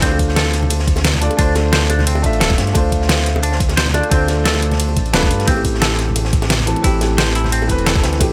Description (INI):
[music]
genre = liquid drum and bass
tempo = 176 BPM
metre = 4/4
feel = swing 53% on 16ths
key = D dorian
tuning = A4 = 440 Hz
[part]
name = warm concert grand piano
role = accompaniment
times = 0.0-8.3 s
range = E3 to E5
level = -23 LUFS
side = equal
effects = delay
[part]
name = semi-hollow electric guitar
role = arpeggios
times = 0.0-8.0 s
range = C4 to C5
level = -26 LUFS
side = equal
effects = tremolo, dub echo
[part]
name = smooth gliding synth bass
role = bass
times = 0.0-8.3 s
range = D1 to G2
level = -21 LUFS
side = equal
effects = none
[part]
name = crunchy breakbeat drum kit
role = drums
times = 0.0-8.3 s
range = hi-hat, snare drum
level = -28 LUFS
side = equal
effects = high-pass filter on hats, high-pass filter on snare, high-pass filter on room
[part]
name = electronic kick drum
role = drums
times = 0.0-8.3 s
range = none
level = -20 LUFS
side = equal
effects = overdrive
[part]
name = pop drum kit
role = drums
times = 0.0-8.3 s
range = hi-hat, ride cymbal, snare drum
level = -22 LUFS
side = equal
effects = overdrive
[part]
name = bongos and congas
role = percussion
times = 0.1-8.3 s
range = none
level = -29 LUFS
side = equal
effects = none
[sound]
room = little or no reverb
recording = none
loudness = -16 LUFS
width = mono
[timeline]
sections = 0.0-8.3 A section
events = none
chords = 0.0 Dm7; 5.5 Am7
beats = | 0.02 0.36 0.70 1.05 | 1.39 1.73 2.07 2.41 | 2.75 3.09 3.43 3.77 | 4.11 4.46 4.80 5.14 | 5.48 5.82 6.16 6.50 | 6.84 7.18 7.52 7.86 | 8.21